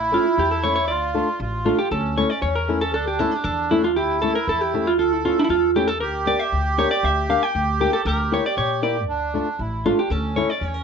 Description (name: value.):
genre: klezmer.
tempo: 117 BPM.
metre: 2/4.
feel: straight.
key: unclear.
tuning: A4 = 440 Hz.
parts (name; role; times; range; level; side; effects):
accordion; second line; 0.0-10.8 s; C#4 to A4; -24 LUFS; right 3 dB; none.
upright bass; bass; 0.0-10.8 s; A1 to Bb2; -27 LUFS; left 1 dB; none.
vintage hollow-body jazz guitar; melody; 0.1-10.8 s; D4 to G5; -22 LUFS; right 1 dB; none.
flamenco guitar; accompaniment; 0.1-10.5 s; A3 to G4; -24 LUFS; left 5 dB; none.
room: moderate small room reverb, RT60 0.5 s.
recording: nothing above 7.8 kHz.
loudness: -19 LUFS.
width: side -6 dB against mid.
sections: 0.0-1.9 A section; 1.9-10.1 B section.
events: none.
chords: 0.0 A; 0.9 Dm; 1.9 A/D; 6.0 Gm/D; 8.1 Edim/D; 9.1 Dm; 10.1 A/D.